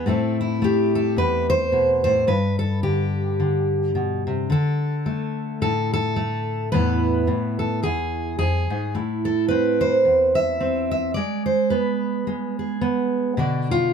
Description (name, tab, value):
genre	folk, solo fingerstyle acoustic guitar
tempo	108 BPM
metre	4/4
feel	swing 57% on 8ths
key	A minor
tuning	A4 = 440 Hz
part	fingerpicked steel-string acoustic guitar	solo	0.0-13.9 s	E2 to E5	-19 LUFS	equal	none
room	light reverb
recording	close, detailed microphones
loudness	-19 LUFS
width	side -7 dB against mid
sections	0.1-13.9 A section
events	none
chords	0.1 Am; 2.3 G; 4.5 D5; 6.7 Esus4; 7.8 E; 8.9 Am; 11.2 G#dim; 13.4 Bdim